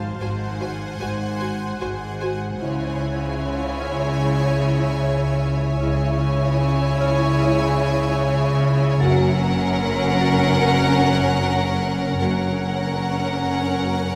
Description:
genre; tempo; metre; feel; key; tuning
cinematic, suspense film score; 75 BPM; 4/4; straight; C# dorian; A4 = 440 Hz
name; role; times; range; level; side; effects
shimmering ambient pad; sustained chords; 0.0-14.2 s; C5 to A#5; -32 LUFS; equal; chorus, built-in reverb
marimba with soft mallets; riff; 0.0-14.0 s; F#2 to C#4; -27 LUFS; equal; none
clear symphonic cello section; bass; 0.0-14.2 s; F#2 to C#3; -28 LUFS; equal; none
rich studio double bass section; bass; 0.0-14.2 s; F#1 to C#2; -29 LUFS; equal; none
bright symphonic violin section; melody; 0.2-14.2 s; F#5 to G#5; -32 LUFS; equal; none
clear chamber violin section; second line; 0.2-14.2 s; A#4 to C#5; -30 LUFS; equal; none
dark symphonic viola section; accompaniment; 0.2-14.2 s; C#4 to F#4; -30 LUFS; equal; none
dark French horn section; sustained chords; 2.6-14.1 s; G#3 to F#4; -31 LUFS; equal; none
room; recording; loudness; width
wet recital hall reverb, RT60 1.6 s; recorded in a church or concert hall; -21 LUFS; mono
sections
0.0-2.6 A section; 2.6-14.2 B section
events
none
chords
0.0 G#7; 2.6 C#m; 9.0 F#

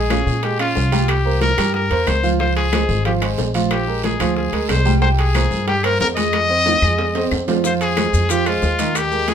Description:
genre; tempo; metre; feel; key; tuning
latin, salsa; 183 BPM; 4/4; straight; F minor; A4 = 440 Hz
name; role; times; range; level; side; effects
bright trumpet; melody; 0.0-9.3 s; F4 to Eb5; -20 LUFS; left 3 dB; none
warm baby grand piano; accompaniment; 0.0-9.3 s; Eb3 to Ab5; -22 LUFS; right 4 dB; none
upright bass; bass; 0.0-9.3 s; Ab1 to Bb2; -20 LUFS; equal; none
bongos; percussion; 0.1-9.3 s; none; -30 LUFS; left 7 dB; none
claves; percussion; 0.1-9.1 s; none; -30 LUFS; left 5 dB; none
congas; percussion; 0.1-9.3 s; none; -27 LUFS; equal; none
guiro; percussion; 0.1-9.3 s; none; -32 LUFS; right 6 dB; none
timbales; percussion; 0.1-9.3 s; none; -27 LUFS; right 5 dB; none
maracas; percussion; 7.6-9.3 s; none; -30 LUFS; left 6 dB; none
room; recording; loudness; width
moderate studio ambience, RT60 0.5 s; minimal, uncompressed stereo recording; -15 LUFS; side -8 dB against mid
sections
0.0-9.3 A section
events
drum fill 6.7-7.6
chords
0.0 Bbm7; 1.1 C7(no3); 2.4 Dbmaj7; 3.7 Bb9; 5.0 C5; 6.3 Fm7

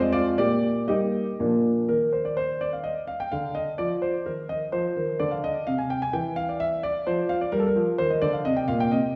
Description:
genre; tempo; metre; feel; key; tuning
classical-period piano sonatina; 128 BPM; 3/4; rubato; unclear; A4 = 441 Hz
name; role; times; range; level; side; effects
warm grand piano; solo; 0.0-9.2 s; F2 to Ab5; -25 LUFS; equal; none
room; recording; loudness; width
wet recital hall reverb, RT60 1.4 s; heard from further back in the room; -26 LUFS; mono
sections
0.0-1.9 A section; 1.9-9.2 B section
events
none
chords
0.4 Eb/Bb; 1.4 Bb; 1.9 N.C.; 3.3 Dm7; 4.3 N.C.; 4.7 F5; 6.1 N.C.; 7.5 Eb

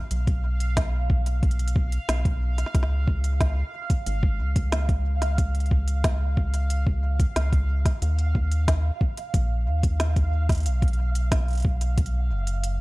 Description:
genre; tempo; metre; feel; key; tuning
IDM; 91 BPM; 4/4; straight; unclear; A4 = 437 Hz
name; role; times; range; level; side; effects
bubbling stepped-filter texture; texture; 0.0-12.8 s; F5; -37 LUFS; right 4 dB; chorus, built-in reverb, sidechain pumping
rubbery square bass; bass; 0.1-12.8 s; Gb1 to Eb2; -23 LUFS; equal; none
organic electronic drum kit; drums; 0.1-12.8 s; hi-hat, snare drum; -31 LUFS; equal; studio reverb
electronic kick drum; drums; 0.3-12.1 s; none; -23 LUFS; equal; studio reverb
room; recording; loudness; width
digital ambience; dark, warm production; -22 LUFS; side -21 dB against mid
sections
0.0-12.8 A section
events
none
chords
0.1 N.C.; 2.7 Db; 8.0 Ebsus2; 10.7 Cb5

